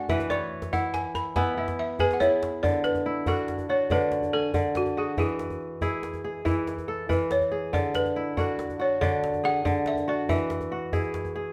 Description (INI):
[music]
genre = west african traditional, West African string and xylophone music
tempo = 94 BPM (dotted quarters)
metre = 12/8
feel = straight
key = D lydian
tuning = A4 = 440 Hz
[part]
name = balafon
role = melody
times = 0.0-11.5 s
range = F#4 to B5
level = -30 LUFS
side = equal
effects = none
[part]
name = kora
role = arpeggios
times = 0.0-11.5 s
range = D3 to G#5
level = -30 LUFS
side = equal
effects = none
[part]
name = djembe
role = percussion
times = 0.1-11.3 s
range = none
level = -35 LUFS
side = equal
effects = none
[sound]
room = moderate recital hall reverb, RT60 1.4 s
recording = none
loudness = -27 LUFS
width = mono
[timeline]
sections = 0.0-2.6 A section; 2.6-11.5 B section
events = balafon solo 0.0-2.6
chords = 0.1 E; 2.6 D; 5.2 E; 7.7 D; 10.3 E